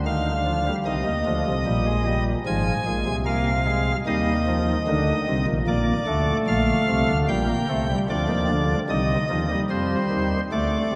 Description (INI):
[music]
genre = classical, baroque-style 4-part fugue for pipe organ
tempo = 75 BPM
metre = 4/4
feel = straight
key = C minor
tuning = A4 = 440 Hz
[part]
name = pipe organ, cornet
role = solo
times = 0.0-11.0 s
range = Ab1 to Ab5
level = -23 LUFS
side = equal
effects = none
[sound]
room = wet church reverb, RT60 3.8 s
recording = none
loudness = -23 LUFS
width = mono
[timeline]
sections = 0.0-11.0 A section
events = none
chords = 0.0 Cm; 2.5 Fm/Ab; 4.1 Cm/Eb; 5.7 Bbmaj9; 7.3 Gm/Bb; 8.9 Cm